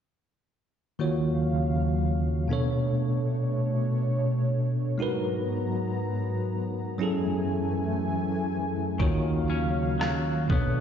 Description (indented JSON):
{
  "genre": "contemporary R&B",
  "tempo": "60 BPM",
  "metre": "4/4",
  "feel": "straight",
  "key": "Eb minor",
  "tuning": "A4 = 440 Hz",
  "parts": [
    { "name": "bell-like tine electric piano", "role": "accompaniment", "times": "1.0-10.8 s", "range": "B2 to Db5", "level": "-27 LUFS", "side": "right 1 dB", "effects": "fast stereo tremolo" },
    { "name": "warm analog pad", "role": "sustained chords", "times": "1.0-10.8 s", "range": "Eb2 to Bb5", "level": "-29 LUFS", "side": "left 1 dB", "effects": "chorus, tremolo, sidechain pumping" },
    { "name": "semi-hollow electric guitar", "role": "arpeggios", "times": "9.0-10.8 s", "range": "Eb3 to Db4", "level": "-32 LUFS", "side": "left 4 dB", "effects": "phaser, ping-pong delay" },
    { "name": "dusty soul sampler-style drum kit", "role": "drums", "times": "9.0-10.7 s", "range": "kick drum, rim click", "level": "-27 LUFS", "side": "equal", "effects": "none" }
  ],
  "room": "moderate lush hall reverb, RT60 2.6 s",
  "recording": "played on a big sound system in a bare room, stone room reverb, nothing above 7.6 kHz",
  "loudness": "-25 LUFS",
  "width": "side -8 dB against mid",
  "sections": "1.0-10.8 A section",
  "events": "none",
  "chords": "1.0 Ebm9; 2.5 Bm9; 5.0 Abm9; 7.0 Gbm9; 9.0 Ebm9"
}